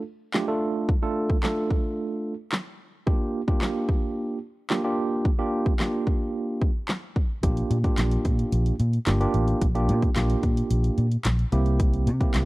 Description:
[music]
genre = dance-pop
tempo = 110 BPM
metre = 4/4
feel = straight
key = unclear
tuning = A4 = 440 Hz
[part]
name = tine electric piano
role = accompaniment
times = 0.3-12.5 s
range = A3 to A4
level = -27 LUFS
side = right 2 dB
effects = medium stereo tremolo, sidechain pumping
[part]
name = pop drum kit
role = drums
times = 0.3-12.5 s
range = handclaps, hi-hat, kick drum, snare drum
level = -25 LUFS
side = equal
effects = overdrive
[part]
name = vintage muted fingered electric bass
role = bass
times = 7.4-12.5 s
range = G1 to C3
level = -23 LUFS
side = equal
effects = sidechain pumping
[sound]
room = digital ambience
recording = dry, close 1970s-style studio recording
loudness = -22 LUFS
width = side -20 dB against mid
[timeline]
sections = 0.0-12.5 A section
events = none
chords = 0.0 Dm; 3.1 Gm7; 7.4 Bb6; 11.5 C7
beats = 0.34 | 0.89 1.43 1.98 2.52 | 3.07 3.61 4.16 4.71 | 5.25 5.80 6.34 6.89 | 7.43 7.98 8.52 9.07 | 9.61 10.16 10.71 11.25 | 11.80 12.34

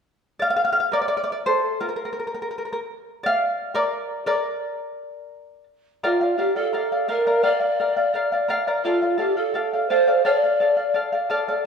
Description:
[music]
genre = andean folk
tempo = 85 BPM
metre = 2/4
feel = straight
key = unclear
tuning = A4 = 439 Hz
[part]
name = charango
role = accompaniment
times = 0.4-11.7 s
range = F4 to F5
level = -22 LUFS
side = left 1 dB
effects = none
[part]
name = mellow hollow pan flute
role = melody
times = 6.0-11.3 s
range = F4 to D5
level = -20 LUFS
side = equal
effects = none
[sound]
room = wet scoring stage reverb, RT60 1.5 s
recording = minimal, uncompressed stereo recording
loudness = -20 LUFS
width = side -6 dB against mid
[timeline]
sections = 0.4-6.0 A section; 6.0-11.7 B section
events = charango solo 0.4-6.0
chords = 0.4 Bb5; 3.2 Bb; 8.8 Dm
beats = | 0.39 1.09 | 1.79 2.50 | 3.21 3.91 | 4.61 5.32 | 6.02 6.73 | 7.43 8.13 | 8.84 9.54 | 10.24 10.95 | 11.65

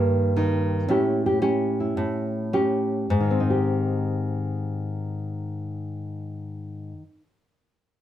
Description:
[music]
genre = solo jazz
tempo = 102-117 BPM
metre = 4/4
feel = swing 69% on 8ths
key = Ab major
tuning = A4 = 439 Hz
[part]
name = nylon-string guitar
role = solo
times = 0.0-7.3 s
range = G2 to G4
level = -23 LUFS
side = equal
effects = none
[sound]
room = moderate studio reverb, RT60 0.5 s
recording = none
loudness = -22 LUFS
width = side -11 dB against mid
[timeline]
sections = 0.0-3.1 A section; 3.1-7.8 B section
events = slowing down 0.0-3.1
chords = 0.0 Cm7 (rootless); 0.9 A7; 3.1 Abmaj7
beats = 0.35 | 0.88 1.41 1.95 2.52 | 3.09 3.68 4.27 4.86 | 5.45 6.04 6.62 7.21

